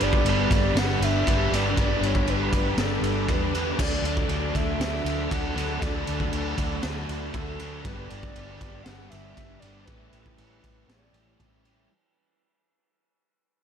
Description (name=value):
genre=rock, shoegaze and dream pop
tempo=118 BPM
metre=4/4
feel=straight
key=D major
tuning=A4 = 440 Hz
part: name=reedy FM lead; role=melody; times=0.0-11.4 s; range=A4 to F#5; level=-34 LUFS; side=equal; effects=chorus, slapback echo
part: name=ensemble organ-string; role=sustained chords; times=0.0-11.9 s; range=G4 to E6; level=-36 LUFS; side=left 1 dB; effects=phaser, ensemble chorus
part: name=distorted electric guitar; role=riff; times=0.0-11.9 s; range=G2 to D4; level=-33 LUFS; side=equal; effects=distortion
part: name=overdriven electric guitar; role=riff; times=0.0-11.9 s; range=G2 to E4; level=-33 LUFS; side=left 12 dB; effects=analog chorus
part: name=overdriven semi-hollow guitar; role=riff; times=0.0-11.9 s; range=G2 to B4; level=-33 LUFS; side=right 12 dB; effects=reverse reverb
part: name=vintage muted fingered electric bass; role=bass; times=0.0-11.9 s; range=G1 to E2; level=-30 LUFS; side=equal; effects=none
part: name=raw garage drum kit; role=drums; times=0.0-11.8 s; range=crash cymbal, kick drum, ride cymbal, snare drum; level=-28 LUFS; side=equal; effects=none
room=small room ambience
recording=none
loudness=-23 LUFS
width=side -8 dB against mid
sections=0.0-11.9 A section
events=fade-out 0.0-11.9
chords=0.0 Gmaj7; 3.8 D6; 7.9 Gmaj7; 9.9 A7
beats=0.26 0.76 1.27 | 1.77 2.28 2.79 3.29 | 3.80 4.31 4.81 5.32 | 5.83 6.33 6.84 7.34 | 7.85 8.36 8.87 9.37 | 9.88 10.39 10.89 11.40